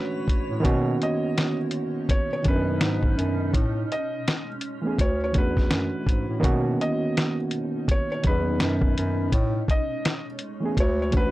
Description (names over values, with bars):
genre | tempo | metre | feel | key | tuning
lo-fi hip hop | 83 BPM | 4/4 | swing 61% on 16ths | B major | A4 = 442 Hz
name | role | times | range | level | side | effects
felt-muted upright piano | melody | 0.0-11.3 s | B4 to D#5 | -32 LUFS | equal | tape echo
overdriven reed electric piano | accompaniment | 0.0-11.3 s | D#3 to G#4 | -26 LUFS | right 2 dB | cassette tape
granular cloud pad | sustained chords | 0.0-11.3 s | B2 to C#5 | -35 LUFS | equal | built-in reverb
lo-fi sampler-style drum kit | drums | 0.3-11.3 s | hi-hat, kick drum, snare drum | -23 LUFS | equal | none
dark bass clarinet | bass | 0.5-11.3 s | D2 to B2 | -26 LUFS | equal | none
room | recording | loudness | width
little or no reverb | dry, gritty hardware recording, transformer saturation | -22 LUFS | side -17 dB against mid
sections
0.0-11.3 A section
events
none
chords
0.0 Dmaj9; 0.7 Bmaj9; 3.5 Amaj7; 5.0 Dmaj9; 6.4 Bmaj9; 9.3 Amaj7; 10.8 Dmaj9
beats
| 0.65 1.37 2.10 2.82 | 3.54 4.26 4.99 5.71 | 6.43 7.16 7.88 8.60 | 9.32 10.05 10.77